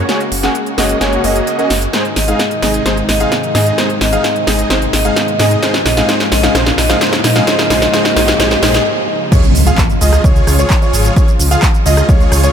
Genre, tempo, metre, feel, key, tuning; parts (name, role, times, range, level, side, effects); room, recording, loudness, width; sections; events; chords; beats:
EDM, festival progressive house; 130 BPM; 4/4; straight; Db major; A4 = 442 Hz
supersaw pad; sustained chords; 0.0-12.5 s; C3 to Gb4; -23 LUFS; right 1 dB; sidechain pumping
dark grand piano; arpeggios; 0.0-12.5 s; C5 to Gb5; -21 LUFS; right 2 dB; sidechain pumping, low-pass filter, digital delay
supersaw chords; riff; 0.0-12.5 s; Bb3 to Gb5; -20 LUFS; right 1 dB; cassette tape, sidechain pumping, low-pass filter, digital delay
wide detuned saw bass; bass; 0.0-12.5 s; Gb1 to Bb2; -16 LUFS; equal; chorus, sidechain pumping
dark grand piano; accompaniment; 0.1-8.8 s; Ab2 to Ab4; -20 LUFS; left 4 dB; sidechain pumping, digital delay
big-room dance drum kit; drums; 0.1-12.5 s; crash cymbal, handclaps, hi-hat, rim click, shaker, snare drum; -16 LUFS; equal
riser and impact; sound effects; 3.9-11.2 s; -20 LUFS; equal
vibraphone with medium hard mallets; melody; 2.2-8.8 s; Eb5; -19 LUFS; left 1 dB; digital delay
electronic kick drum; drums; 9.3-12.2 s; -11 LUFS; equal
light reverb, digital ambience; -10 LUFS; side -8 dB against mid
0.0-9.3 A section; 9.3-12.5 B section
build-up 0.0-9.3; drum fill 0.0-8.9; filter sweep on supersaw synth 0.0-9.3; filter sweep on grand piano 0.0-9.3; riser 3.9-8.9; break 8.9-9.3; drop 9.3-12.5; impact 9.3-11.2
0.0 Gbadd9; 1.9 Ab; 5.6 Bbm; 9.3 Db
| 0.09 0.55 1.01 1.47 | 1.93 2.40 2.86 3.32 | 3.78 4.24 4.70 5.17 | 5.63 6.09 6.55 7.01 | 7.47 7.93 8.40 8.86 | 9.32 9.78 10.24 10.70 | 11.16 11.63 12.09